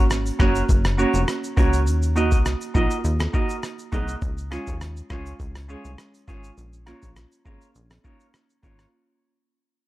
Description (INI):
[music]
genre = dancehall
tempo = 102 BPM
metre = 4/4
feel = straight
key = Bb minor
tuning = A4 = 440 Hz
[part]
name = clean electric guitar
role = arpeggios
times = 0.0-8.8 s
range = F4 to Eb5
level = -29 LUFS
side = equal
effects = spring reverb
[part]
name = plucky analog bass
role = bass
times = 0.0-8.9 s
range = F1 to Eb2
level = -25 LUFS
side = equal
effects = none
[part]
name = lo-fi sampler-style drum kit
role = drums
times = 0.1-8.9 s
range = kick drum, rim click, shaker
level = -22 LUFS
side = equal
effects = none
[part]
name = egg shaker and timbales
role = percussion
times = 0.1-8.9 s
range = none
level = -42 LUFS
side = equal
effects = none
[part]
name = buzzing marimba with medium mallets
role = accompaniment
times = 0.4-8.8 s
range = Ab3 to Ab4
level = -27 LUFS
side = right 4 dB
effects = none
[sound]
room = little or no reverb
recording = dark, warm production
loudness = -20 LUFS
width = side -16 dB against mid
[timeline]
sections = 0.0-8.9 A section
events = fade-out 0.0-8.9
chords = 0.0 Gb; 1.9 Ebm; 4.2 Db; 6.6 Bbm